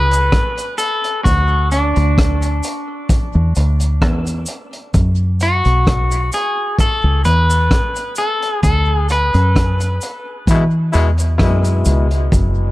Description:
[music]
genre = dub reggae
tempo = 65 BPM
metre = 4/4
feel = straight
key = F# minor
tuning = A4 = 436 Hz
[part]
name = electric guitar at the edge of break-up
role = melody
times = 0.0-10.9 s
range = D4 to B4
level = -18 LUFS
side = left 1 dB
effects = tape echo
[part]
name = deep dub fingered electric bass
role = bass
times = 0.0-12.7 s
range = F#1 to E3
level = -14 LUFS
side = equal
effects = none
[part]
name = crunchy breakbeat drum kit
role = drums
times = 0.1-12.5 s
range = hi-hat, kick drum, rim click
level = -18 LUFS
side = equal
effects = none
[part]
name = cabasa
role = percussion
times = 0.1-12.6 s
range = none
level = -30 LUFS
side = equal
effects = tape echo
[part]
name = brilliant trombone section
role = second line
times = 10.5-12.1 s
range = B2 to E4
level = -20 LUFS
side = left 3 dB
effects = tape echo
[sound]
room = small room reverb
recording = none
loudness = -13 LUFS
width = side -18 dB against mid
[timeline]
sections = 0.0-12.7 A section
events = band accent 8.6-12.3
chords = 0.0 F#m (rootless); 1.3 D; 3.1 Dsus2; 4.9 F#5; 8.6 D; 10.5 E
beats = 0.33 | 1.25 2.18 3.10 4.02 | 4.95 5.87 6.79 7.71 | 8.63 9.55 10.48 11.40 | 12.32

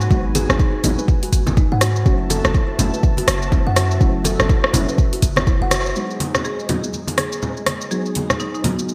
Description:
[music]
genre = afro house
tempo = 123 BPM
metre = 4/4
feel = swing 59% on 16ths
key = unclear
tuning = A4 = 440 Hz
[part]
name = warm analog pad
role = sustained chords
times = 0.0-8.9 s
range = G#3 to A5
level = -34 LUFS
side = equal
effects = subtle chorus, sidechain pumping
[part]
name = deep mellow chord stab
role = stabs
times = 0.0-8.9 s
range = F#3 to F#4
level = -29 LUFS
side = equal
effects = chorus, sidechain pumping, digital delay
[part]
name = warm 808-style bass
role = bass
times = 0.0-5.9 s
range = F#1 to G#2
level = -24 LUFS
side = equal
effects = sidechain pumping
[part]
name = afro-pop drum kit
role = drums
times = 0.0-8.9 s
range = hi-hat, rim click, shaker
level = -24 LUFS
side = equal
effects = small room reverb, gated reverb
[part]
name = kalimba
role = arpeggios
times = 0.1-5.8 s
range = D#4 to F#5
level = -29 LUFS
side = equal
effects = sidechain pumping, digital delay
[part]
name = electronic kick drum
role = drums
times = 0.1-5.6 s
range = none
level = -19 LUFS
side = equal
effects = small room reverb
[part]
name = congas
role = percussion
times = 0.4-8.8 s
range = none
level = -28 LUFS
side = equal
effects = none
[part]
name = marimba with hard mallets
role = melody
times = 6.4-8.6 s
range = D#4 to G#4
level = -32 LUFS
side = equal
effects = digital delay
[sound]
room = light reverb, digital ambience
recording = bright 1980s-style digital production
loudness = -18 LUFS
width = mono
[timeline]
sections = 0.0-6.0 A section; 6.0-8.9 B section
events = band accent 5.7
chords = 0.0 G#m7; 2.1 F#m7; 6.0 G#m7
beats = | 0.11 0.59 1.08 1.57 | 2.06 2.55 3.03 3.52 | 4.01 4.50 4.99 5.47 | 5.96 6.45 6.94 7.42 | 7.91 8.40 8.89

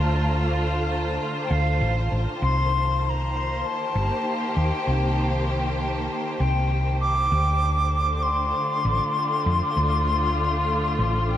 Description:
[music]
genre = ambient dub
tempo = 98 BPM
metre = 4/4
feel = straight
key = unclear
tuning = A4 = 439 Hz
[part]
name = wooden flute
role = melody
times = 0.0-11.4 s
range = F5 to D6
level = -25 LUFS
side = left 2 dB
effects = dub echo
[part]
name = clear symphonic string section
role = sustained chords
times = 0.0-11.4 s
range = D3 to C5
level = -28 LUFS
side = equal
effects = none
[part]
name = hollow-body short-scale fingered electric bass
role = bass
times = 0.0-11.4 s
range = G1 to F2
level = -24 LUFS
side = equal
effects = none
[sound]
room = light reverb, studio ambience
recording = none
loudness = -21 LUFS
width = side -11 dB against mid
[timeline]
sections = 0.0-11.4 A section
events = none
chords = 0.0 Dm7; 2.4 Cm7; 7.3 Dm7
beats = 0.58 1.20 1.81 | 2.42 3.03 3.65 4.26 | 4.87 5.48 6.09 6.71 | 7.32 7.93 8.54 9.16 | 9.77 10.38 10.99

